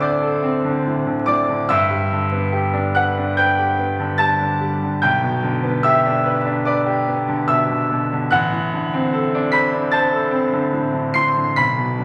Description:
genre	classical, romantic character piece for solo piano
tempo	72 BPM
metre	4/4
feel	rubato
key	G major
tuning	A4 = 438 Hz
part	bright concert grand piano	solo	0.0-12.0 s	A1 to C7	-19 LUFS	equal	none
room	wet recital hall reverb, RT60 1.6 s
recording	vinyl crackle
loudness	-19 LUFS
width	mono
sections	0.0-12.0 A section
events	none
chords	0.0 D7; 1.7 G; 5.0 G/B; 8.3 D7/A

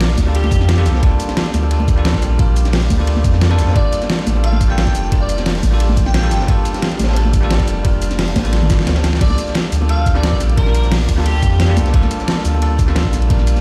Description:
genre	liquid drum and bass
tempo	176 BPM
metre	4/4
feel	straight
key	unclear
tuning	A4 = 440 Hz
part	bell-like tine electric piano	accompaniment	0.0-13.6 s	G3 to Bb4	-26 LUFS	equal	tape echo
part	glassy FM pad	sustained chords	0.0-13.6 s	Bb3 to E6	-34 LUFS	equal	none
part	warm sub bass	bass	0.0-13.6 s	F1 to F2	-18 LUFS	equal	none
part	crunchy breakbeat drum kit	drums	0.0-13.6 s	hi-hat, ride cymbal, snare drum	-30 LUFS	equal	high-pass filter on cymbals, high-pass filter on hats, high-pass filter on snare, high-pass filter on room
part	pop drum kit	drums	0.0-13.6 s	crash cymbal, hi-hat, shaker, snare drum, toms	-24 LUFS	equal	overdrive
part	electronic kick drum	drums	0.2-13.4 s	none	-19 LUFS	equal	overdrive
part	congas and bongos	percussion	0.2-13.4 s	none	-28 LUFS	equal	none
part	airy dreamy lead	melody	0.3-0.8, 3.8-6.4, 9.2-11.7 s	G4 to G5	-28 LUFS	equal	chorus, delay
room	light reverb, digital ambience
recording	played on a big sound system in a bare room, stone room reverb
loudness	-15 LUFS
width	mono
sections	0.0-9.2 A section; 9.2-13.6 A section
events	drop 0.0-9.2, 9.2-13.6; drum fill 8.5-9.2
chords	0.0 C9sus4 (rootless); 3.8 Gm9; 9.2 C9sus4 (rootless)

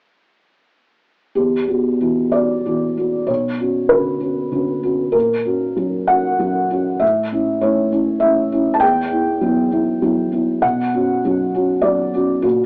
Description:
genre	neoclassical minimalist piano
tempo	98 BPM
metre	3/4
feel	rubato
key	B minor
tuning	A4 = 439 Hz
part	felt-muted upright piano	solo	1.4-12.7 s	B1 to A5	-18 LUFS	equal	cassette tape
room	moderate studio reverb, RT60 0.5 s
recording	home recording on cassette, AM radio sound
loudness	-18 LUFS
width	mono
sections	1.4-12.7 A section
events	none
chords	1.4 Emadd9; 3.3 Bmadd9; 5.1 F#/A#; 7.0 A; 8.8 Emadd9; 10.6 Bsus2

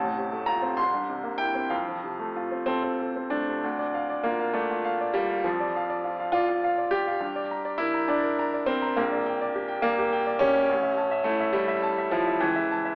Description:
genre	classical, virtuoso piano study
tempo	62-71 BPM (dotted quarters)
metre	6/8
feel	rubato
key	F major, D minor from 3.6 s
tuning	A4 = 440 Hz
part	clear baby grand piano	solo	0.0-12.9 s	A1 to C6	-27 LUFS	equal	none
room	moderate recital hall reverb, RT60 1.7 s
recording	AM radio sound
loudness	-27 LUFS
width	mono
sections	0.0-3.6 A section; 3.6-12.9 B section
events	none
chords	0.0 F/A; 0.8 C7; 1.7 F; 3.6 Dm; 5.4 Dm/F; 7.2 Gm; 9.0 Gm/Bb; 10.7 A; 12.4 A/C#

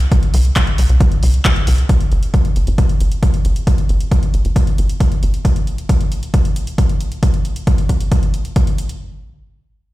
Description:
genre	uplifting trance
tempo	135 BPM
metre	4/4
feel	straight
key	unclear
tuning	A4 = 439 Hz
part	tight sequencer bass	bass	0.0-5.4 s	G1 to C2	-14 LUFS	equal	sidechain pumping
part	punchy analog drum machine	drums	0.0-9.0 s	handclaps, hi-hat	-26 LUFS	equal	overdrive
part	electronic kick drum	drums	0.1-8.6 s	none	-15 LUFS	equal	overdrive
room	digital ambience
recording	played on a big sound system in a bare room, large studio reverb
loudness	-13 LUFS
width	side -17 dB against mid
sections	0.0-9.0 A section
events	filter sweep on analog synth bass 0.0-5.4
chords	none

